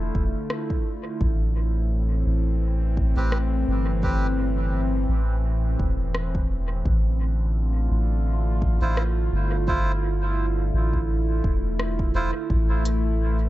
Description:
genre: ambient dub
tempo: 85 BPM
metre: 4/4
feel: swing 56% on 16ths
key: A minor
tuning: A4 = 439 Hz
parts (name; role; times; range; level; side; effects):
- warbly tape-like pad; sustained chords; 0.0-13.5 s; A2 to C5; -29 LUFS; equal; chorus, built-in reverb, phaser
- soft dub sub bass; bass; 0.0-13.5 s; E1 to A1; -23 LUFS; equal; none
- electronic kick drum; drums; 0.1-12.7 s; none; -26 LUFS; equal; none
- organic electronic drum kit; drums; 0.5-13.0 s; hi-hat, rim click; -36 LUFS; equal; dub echo
- melodica; stabs; 3.2-4.3, 8.8-12.3 s; C4 to C5; -33 LUFS; right 2 dB; dub echo
room: digital ambience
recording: dark, warm production, nothing above 8.0 kHz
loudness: -21 LUFS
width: side -16 dB against mid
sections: 0.0-12.5 A section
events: none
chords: 0.0 Dm; 1.2 Am7; 6.9 Dm7; 12.5 Asus2

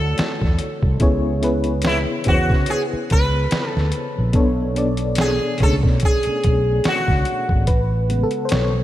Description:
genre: R&B, neo-soul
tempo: 72 BPM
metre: 4/4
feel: swing 58% on 16ths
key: B dorian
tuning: A4 = 440 Hz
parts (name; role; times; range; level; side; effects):
- sitar; melody; 0.0-7.5 s; E4 to B4; -24 LUFS; equal; slapback echo, analog delay
- FM electric piano with tremolo; accompaniment; 0.0-8.8 s; B2 to D5; -23 LUFS; left 2 dB; slapback echo
- fretless electric bass; bass; 0.0-8.8 s; G#1 to C#3; -21 LUFS; equal; none
- boom bap sampler-style drum kit; drums; 0.2-8.7 s; hi-hat, kick drum, snare drum; -20 LUFS; equal; none
room: light reverb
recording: none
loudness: -16 LUFS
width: side -13 dB against mid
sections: 0.0-7.7 A section; 7.7-8.8 B section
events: FM electric piano solo 7.7-8.8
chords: 0.0 Dmaj7; 1.0 C#m7; 4.3 Bm9; 7.7 Amaj9

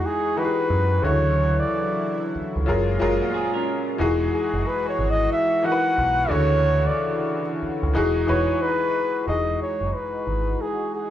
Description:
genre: R&B, neo-soul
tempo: 91 BPM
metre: 4/4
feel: swing 62% on 16ths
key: E major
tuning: A4 = 441 Hz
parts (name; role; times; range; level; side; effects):
- mellow flugelhorn; melody; 0.0-11.1 s; G#4 to F#5; -23 LUFS; equal; none
- bright upright piano; accompaniment; 0.0-11.1 s; C#3 to B4; -25 LUFS; left 3 dB; none
- chorused pulse-width pad; sustained chords; 0.0-11.1 s; A#2 to F#4; -31 LUFS; equal; none
- deep dub picked electric bass; bass; 0.7-10.5 s; E1 to F#2; -24 LUFS; right 1 dB; none
- electric guitar through a small old amp; second line; 3.0-4.0 s; G#3 to A#4; -28 LUFS; right 7 dB; none
room: light reverb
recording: band playing live in one room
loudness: -20 LUFS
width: side -11 dB against mid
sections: 0.0-9.3 A section; 9.3-11.1 B section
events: flugelhorn solo 0.0-9.3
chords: 0.0 Emaj9; 1.0 Dmaj9; 2.7 F#maj9; 4.0 Emaj9; 6.3 Dmaj9; 7.9 Emaj9

